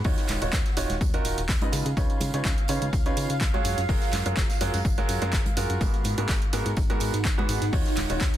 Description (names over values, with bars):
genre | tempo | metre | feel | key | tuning
piano house | 125 BPM | 4/4 | swing 54% on 16ths | G# dorian | A4 = 439 Hz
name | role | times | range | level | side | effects
bright upright piano | riff | 0.0-8.2 s | G#2 to D#5 | -30 LUFS | right 2 dB | sidechain pumping, ping-pong delay
organ-like FM bass | bass | 0.0-8.3 s | D#1 to C#3 | -30 LUFS | left 1 dB | sidechain pumping
electronic kick drum | drums | 0.0-8.3 s | none | -26 LUFS | left 1 dB | overdrive
modern studio drum kit | drums | 0.0-8.4 s | hi-hat, snare drum, tambourine | -41 LUFS | right 5 dB | high-pass filter on hats, high-pass filter on snare, high-pass filter on perc, high-pass filter on room
downlifter | sound effects | 0.0-2.0 s | none | -48 LUFS | equal | none
granular cloud pad | texture | 0.0-8.4 s | D#4 to F#5 | -35 LUFS | right 3 dB | built-in reverb, sidechain pumping
tambourine and congas | percussion | 0.1-8.4 s | none | -39 LUFS | right 2 dB | none
punchy analog drum machine | drums | 0.2-8.4 s | handclaps, hi-hat | -32 LUFS | right 1 dB | overdrive
room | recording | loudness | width
small room ambience | dense, heavily limited modern master | -23 LUFS | side -12 dB against mid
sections
0.0-8.4 A section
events
none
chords
0.0 D#m9; 1.7 C#9; 3.6 F#maj9; 5.8 G#m9; 7.7 D#m9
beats
| 0.05 0.53 1.01 1.49 | 1.97 2.45 2.93 3.41 | 3.89 4.37 4.85 5.33 | 5.81 6.29 6.77 7.25 | 7.73 8.21